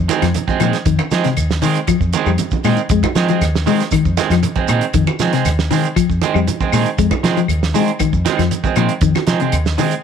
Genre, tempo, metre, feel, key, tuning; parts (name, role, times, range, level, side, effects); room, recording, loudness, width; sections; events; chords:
afrobeat; 118 BPM; 4/4; straight; F minor; A4 = 440 Hz
fingered electric bass; bass; 0.0-9.8 s; Eb2 to F3; -18 LUFS; equal
electric guitar at the edge of break-up; stabs; 0.1-9.9 s; Eb3 to C4; -20 LUFS; right 9 dB
damped 70s drum kit; drums; 0.1-10.0 s; hi-hat, kick drum, snare drum; -22 LUFS; right 2 dB
congas; percussion; 0.1-9.9 s; -23 LUFS; right 10 dB
shekere; percussion; 0.1-10.0 s; -28 LUFS; right 5 dB
clean electric guitar; arpeggios; 0.2-9.9 s; C3 to Ab3; -19 LUFS; left 11 dB
claves; percussion; 0.2-9.7 s; -28 LUFS; left 13 dB
light reverb, small room ambience; 1960s-style stereo with parts hard left and right; -14 LUFS; side -7 dB against mid
0.0-10.0 A section
0.0 Fm7